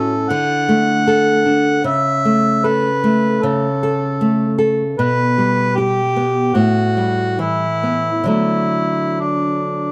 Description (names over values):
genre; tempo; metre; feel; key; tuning
romantic duo for harmonica and classical guitar; 65-79 BPM; 4/4; rubato; D major; A4 = 438 Hz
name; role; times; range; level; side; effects
mellow harmonica; melody; 0.0-9.9 s; D4 to F#5; -20 LUFS; equal; none
nylon-string guitar; accompaniment; 0.0-9.9 s; A2 to A4; -19 LUFS; equal; none
room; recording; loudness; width
moderate studio reverb, RT60 0.6 s; none; -17 LUFS; mono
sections
0.0-9.9 A section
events
none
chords
0.3 D; 1.9 A/C#; 5.0 G/B; 6.6 Asus2; 8.3 D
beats
0.29 1.07 | 1.85 2.65 3.44 4.21 | 4.99 5.77 6.55 7.40 | 8.29 9.20